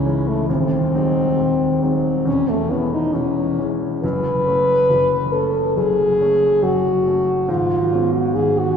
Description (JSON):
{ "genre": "classical, romantic duo for French horn and grand piano", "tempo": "69 BPM", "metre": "4/4", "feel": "rubato", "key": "unclear", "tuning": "A4 = 440 Hz", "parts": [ { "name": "warm French horn", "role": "melody", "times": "0.0-8.8 s", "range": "A3 to B4", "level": "-18 LUFS", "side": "left 1 dB", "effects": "none" }, { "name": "clear grand piano", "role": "accompaniment", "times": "0.0-8.8 s", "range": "C#1 to D#4", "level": "-21 LUFS", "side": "right 1 dB", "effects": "none" } ], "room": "wet concert hall reverb, RT60 2.3 s", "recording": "heard from further back in the room", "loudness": "-16 LUFS", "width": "side -7 dB against mid", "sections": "0.0-8.8 A section", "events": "none", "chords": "0.5 G#7/D#; 2.3 C#m/E; 4.0 F#m; 7.5 C#5/G#" }